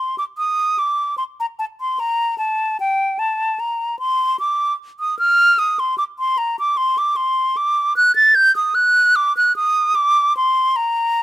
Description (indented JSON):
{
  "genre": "classical, baroque-style fantasia for unaccompanied flute",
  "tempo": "75 BPM",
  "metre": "3/4",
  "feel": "rubato",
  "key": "unclear",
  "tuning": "A4 = 439 Hz",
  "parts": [
    { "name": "hollow concert flute", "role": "solo", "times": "0.0-11.2 s", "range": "G5 to A6", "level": "-15 LUFS", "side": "equal", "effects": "none" }
  ],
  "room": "little or no reverb",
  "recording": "close, detailed microphones",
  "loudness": "-15 LUFS",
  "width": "side -14 dB against mid",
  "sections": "0.0-11.2 A section",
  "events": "none",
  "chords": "none",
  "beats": "| 0.38 1.17 1.98 | 2.78 3.58 4.37 | 5.17 5.96 6.75 | 7.56 8.35 9.15 | 9.96 10.77"
}